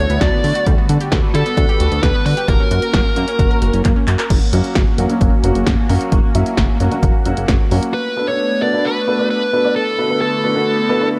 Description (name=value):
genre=synth-pop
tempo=132 BPM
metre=4/4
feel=straight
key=unclear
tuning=A4 = 439 Hz
part: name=dark smooth lead guitar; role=melody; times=0.0-3.8, 7.9-11.1 s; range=A4 to D5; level=-21 LUFS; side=equal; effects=overdrive, tape echo
part: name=phased analog pad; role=sustained chords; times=0.0-11.2 s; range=D3 to B4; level=-26 LUFS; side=equal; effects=phaser, chorus
part: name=analog pluck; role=arpeggios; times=0.0-4.2 s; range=F#3 to A#4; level=-27 LUFS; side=equal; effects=chorus, tape echo
part: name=chorused synth bass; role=bass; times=0.0-7.8 s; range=F#1 to D3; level=-19 LUFS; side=equal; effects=none
part: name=punchy analog drum machine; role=drums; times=0.1-7.9 s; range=crash cymbal, handclaps, hi-hat, kick drum, snare drum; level=-18 LUFS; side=equal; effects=none
part: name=dark baby grand piano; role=accompaniment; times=4.5-11.2 s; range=F#3 to D5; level=-22 LUFS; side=equal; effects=none
room=light reverb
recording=dark, warm production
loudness=-16 LUFS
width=mono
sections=0.0-4.3 A section; 4.3-7.9 B section; 7.9-11.2 C section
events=drum fill 3.8-4.3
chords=0.0 D6; 0.7 Gmaj7/D; 2.5 F#; 7.9 Bm7; 9.8 D6